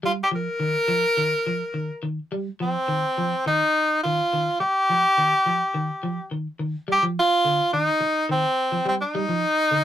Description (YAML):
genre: afrobeat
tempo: 105 BPM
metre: 4/4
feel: straight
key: C minor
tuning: A4 = 438 Hz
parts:
  - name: electric guitar at the edge of break-up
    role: arpeggios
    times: 0.0-9.8 s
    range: D3 to G3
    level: -28 LUFS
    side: equal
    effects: none
  - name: edgy tenor saxophone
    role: melody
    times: 0.1-9.8 s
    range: C4 to Bb4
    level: -20 LUFS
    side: equal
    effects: none
room: moderate booth ambience, RT60 0.2 s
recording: rough rehearsal-room recording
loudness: -20 LUFS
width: side -11 dB against mid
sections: 0.0-6.9 A section; 6.9-9.8 B section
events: none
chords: 0.0 Cm7 (rootless); 6.9 Cm (rootless)